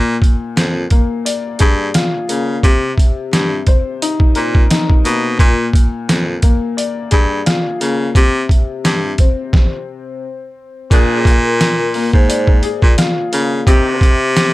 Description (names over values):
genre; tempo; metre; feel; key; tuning
hip hop, boom-bap hip-hop; 87 BPM; 4/4; swing 56% on 16ths; unclear; A4 = 442 Hz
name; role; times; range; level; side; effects
warm upright piano; accompaniment; 0.0-14.5 s; Bb2 to D5; -20 LUFS; left 4 dB; high-pass filter, low-pass filter
bright baritone saxophone; bass; 0.0-14.5 s; F2 to Db3; -17 LUFS; equal; none
trip hop sampler-style drum kit; drums; 0.2-14.5 s; hi-hat, kick drum, snare drum; -12 LUFS; equal; none
vibraphone with soft mallets; melody; 10.9-12.4 s; Ab4 to C5; -22 LUFS; right 2 dB; high-pass filter, low-pass filter, ping-pong delay
warm horn section; stabs; 10.9-14.1 s; Eb3 to Ab4; -24 LUFS; equal; high-pass filter, low-pass filter, ping-pong delay
room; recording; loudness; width
little or no reverb; none; -12 LUFS; side -18 dB against mid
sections
0.0-10.9 A section; 10.9-14.5 B section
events
stop 9.5-10.9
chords
0.0 Bb7; 2.6 Cm7; 5.4 Bb7; 8.2 C5; 10.9 Bb7; 13.7 Cm